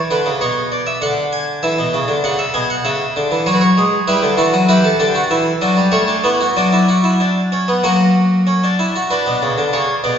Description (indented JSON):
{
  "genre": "classical, baroque-style 3-part fugue for harpsichord",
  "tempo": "97 BPM",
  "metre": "4/4",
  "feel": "straight",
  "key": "B minor",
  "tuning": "A4 = 436 Hz",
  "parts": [
    { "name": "harpsichord", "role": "solo", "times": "0.1-10.2 s", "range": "B2 to G#5", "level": "-13 LUFS", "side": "equal", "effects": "none" }
  ],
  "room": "wet recital hall reverb, RT60 1.7 s",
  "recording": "recorded in a church or concert hall, nothing above 7.7 kHz",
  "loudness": "-13 LUFS",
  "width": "side -8 dB against mid",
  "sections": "0.0-9.1 A section; 9.1-10.2 B section",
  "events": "none",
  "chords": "0.4 Bm; 2.9 C#madd11; 4.1 Em; 6.6 Bm/F#; 7.8 F#; 9.1 Bm",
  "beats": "0.41 1.02 | 1.64 2.25 2.86 3.47 | 4.08 4.69 5.31 5.93 | 6.57 7.21 7.84 8.48 | 9.11 9.73"
}